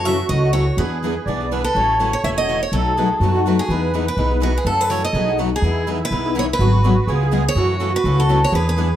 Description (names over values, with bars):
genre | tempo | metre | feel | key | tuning
acoustic string swing (jazz manouche) | 248 BPM | 4/4 | swing 57% on 8ths | E major | A4 = 440 Hz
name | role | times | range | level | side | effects
picked steel-string acoustic guitar | melody | 0.0-9.0 s | F#4 to E5 | -22 LUFS | equal | plate reverb
musette accordion | second line | 0.0-9.0 s | D#4 to D5 | -24 LUFS | right 4 dB | none
picked swing-style acoustic guitar | accompaniment | 0.0-8.9 s | B2 to B4 | -29 LUFS | right 6 dB | none
upright bass | bass | 0.0-8.9 s | E1 to F#2 | -20 LUFS | equal | none
picked steel-string acoustic guitar | accompaniment | 0.1-8.9 s | B2 to G#4 | -24 LUFS | left 6 dB | none
room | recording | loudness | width
moderate studio reverb, RT60 0.6 s | none | -16 LUFS | side -11 dB against mid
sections
0.0-5.6 A section; 5.6-9.0 A section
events
none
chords
0.0 F#m7; 0.8 E7; 1.8 A6; 2.7 B7; 3.7 Emaj7; 4.7 F#m7; 5.1 B7; 5.6 Emaj7; 6.6 G#m7b5; 7.1 C#7; 7.6 F#m7